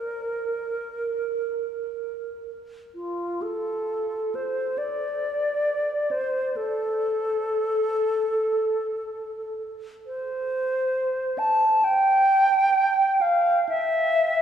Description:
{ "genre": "classical, free, expressive piece for unaccompanied alto flute", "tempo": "free time", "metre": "none", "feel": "none", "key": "unclear", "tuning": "A4 = 438 Hz", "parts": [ { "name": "bright alto flute", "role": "solo", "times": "0.0-14.4 s", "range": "F4 to A5", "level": "-22 LUFS", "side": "equal", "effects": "none" } ], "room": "wet cathedral reverb, RT60 4.6 s", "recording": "heard from further back in the room, small room ambience", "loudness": "-22 LUFS", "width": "side -9 dB against mid", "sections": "0.0-14.4 A section", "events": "none", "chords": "none", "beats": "free time" }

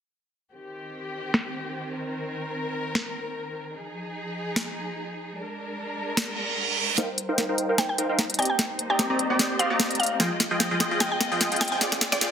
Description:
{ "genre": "future bass", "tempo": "149 BPM", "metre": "4/4", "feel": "swing 55% on 16ths, half-time", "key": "Eb major", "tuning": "A4 = 439 Hz", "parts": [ { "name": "rich studio string section", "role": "sustained chords", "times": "0.5-12.3 s", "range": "Eb3 to Eb5", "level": "-33 LUFS", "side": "left 1 dB", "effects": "low-pass filter" }, { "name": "trap drum kit", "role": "drums", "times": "1.3-12.3 s", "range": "finger snaps, hi-hat, snare drum", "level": "-24 LUFS", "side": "equal", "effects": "soft clipping on snare, low-pass filter on snare, low-pass filter on hats" }, { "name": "reverse cymbal and riser", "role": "sound effects", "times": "6.3-12.3 s", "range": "none", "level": "-32 LUFS", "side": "right 5 dB", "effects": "none" }, { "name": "supersaw stab", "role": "riff", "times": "7.0-12.3 s", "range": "F3 to C6", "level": "-26 LUFS", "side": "equal", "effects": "phaser, low-pass filter" }, { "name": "mallet-like synth pluck", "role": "melody", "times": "7.8-12.3 s", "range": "D5 to G5", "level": "-28 LUFS", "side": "equal", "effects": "chorus, cassette tape, dub echo" } ], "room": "moderate digital room reverb, RT60 1.1 s, digital ambience", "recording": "dense, heavily limited modern master, high-pass filter", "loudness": "-24 LUFS", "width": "side -8 dB against mid", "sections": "0.5-7.0 A section; 7.0-12.3 B section", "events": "filter sweep on drum 0.5-7.0; reverse cymbal 6.3-7.0; build-up 7.0-12.3; drum fill 7.0-12.3; filter sweep on supersaw synth 7.0-12.3; filter sweep on synth pluck 7.0-12.3; filter sweep on string section 7.0-12.3", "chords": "0.5 Eb6; 1.9 Cm7; 3.8 Fm7; 5.4 Bb7; 7.0 Eb6; 8.4 Cm7; 10.2 Fm7; 11.8 Bb7", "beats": "| 0.54 0.94 1.34 1.74 | 2.15 2.55 2.95 3.35 | 3.76 4.16 4.56 4.96 | 5.37 5.77 6.17 6.58 | 6.98 7.38 7.78 8.19 | 8.59 8.99 9.39 9.80 | 10.20 10.60 11.01 11.41 | 11.81 12.21" }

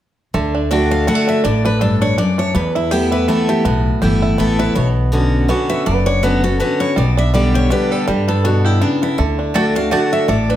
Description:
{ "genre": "bluegrass", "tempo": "163 BPM", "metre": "3/4", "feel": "swing 56% on 8ths", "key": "D major", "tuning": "A4 = 441 Hz", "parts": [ { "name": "bluegrass banjo", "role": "melody", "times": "0.3-10.6 s", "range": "D3 to G4", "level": "-23 LUFS", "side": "right 4 dB", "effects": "none" }, { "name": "picked steel-string acoustic guitar", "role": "accompaniment", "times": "0.3-10.6 s", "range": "E2 to G4", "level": "-17 LUFS", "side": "left 1 dB", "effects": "none" }, { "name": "upright bass", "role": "bass", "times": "0.3-10.5 s", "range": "F#1 to G2", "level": "-18 LUFS", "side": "equal", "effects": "none" }, { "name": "picked steel-string acoustic guitar", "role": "melody", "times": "0.7-10.6 s", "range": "D4 to G5", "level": "-21 LUFS", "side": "left 2 dB", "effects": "none" }, { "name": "mandolin", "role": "stabs", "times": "9.5-10.0 s", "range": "A3 to A5", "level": "-21 LUFS", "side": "right 4 dB", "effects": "none" } ], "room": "moderate large studio reverb, RT60 1.2 s", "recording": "none", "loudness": "-13 LUFS", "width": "side -12 dB against mid", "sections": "0.3-10.6 A section", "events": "none", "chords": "0.3 D; 2.5 Esus4; 4.8 Bmadd9; 7.0 G/B; 9.2 D", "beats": "| 0.34 0.71 1.07 | 1.44 1.81 2.18 | 2.55 2.92 3.29 | 3.65 4.02 4.39 | 4.76 5.13 5.50 | 5.87 6.23 6.60 | 6.97 7.34 7.71 | 8.07 8.44 8.81 | 9.18 9.55 9.92 | 10.29" }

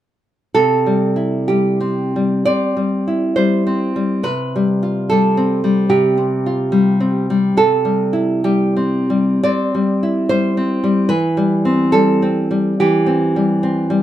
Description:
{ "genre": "romantic piece for solo classical guitar", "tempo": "57-76 BPM", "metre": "4/4", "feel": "rubato", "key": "C major", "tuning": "A4 = 440 Hz", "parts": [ { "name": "nylon-string guitar", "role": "solo", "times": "0.5-14.0 s", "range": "C3 to D5", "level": "-14 LUFS", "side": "equal", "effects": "none" } ], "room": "moderate studio reverb, RT60 0.7 s", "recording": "band playing live in one room", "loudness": "-14 LUFS", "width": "side -12 dB against mid", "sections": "0.6-14.0 A section", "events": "none", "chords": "0.6 C; 4.3 G7/C; 7.6 C; 11.1 C/E", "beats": "| 0.55 1.49 2.47 3.37 | 4.25 5.11 5.92 6.74 | 7.57 8.43 9.42 10.28 | 11.07 11.90 12.76 13.60" }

